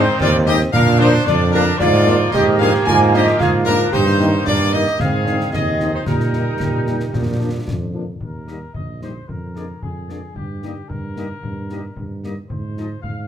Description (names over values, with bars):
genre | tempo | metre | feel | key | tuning
military-style march for wind band | 112 BPM | 2/4 | straight | Eb major | A4 = 445 Hz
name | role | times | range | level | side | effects
mellow trumpet section | melody | 0.0-13.3 s | G4 to Ab5 | -24 LUFS | left 1 dB | none
clear woodwind section | second line | 0.0-12.9 s | D4 to Eb5 | -26 LUFS | left 3 dB | none
mellow large flute ensemble | second line | 0.0-7.6 s | Bb4 to Ab5 | -23 LUFS | left 1 dB | none
warm euphonium | second line | 0.0-7.9 s | C4 to G4 | -22 LUFS | right 4 dB | none
mellow French horn section | accompaniment | 0.0-12.9 s | Eb3 to Eb4 | -24 LUFS | left 4 dB | none
clear trombone section | sustained chords | 0.0-7.9 s | Eb3 to Eb4 | -25 LUFS | right 2 dB | none
mellow tuba | bass | 0.0-13.3 s | Bb1 to Bb2 | -20 LUFS | right 2 dB | none
concert snare drum, concert bass drum and clash cymbals | drums | 0.2-13.2 s | none | -25 LUFS | left 2 dB | none
room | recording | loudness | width
moderate large studio reverb, RT60 1.0 s | none | -14 LUFS | side -9 dB against mid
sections
0.0-8.2 A section; 8.2-13.3 B section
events
none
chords
0.0 Ab; 0.7 Bb; 1.8 Bb7/Ab; 3.9 Eb/G; 5.0 Ab; 6.1 Eb/Bb; 7.1 Bb; 8.2 Eb; 9.3 Bb7/F; 10.4 Eb/G; 12.5 Fm7/Ab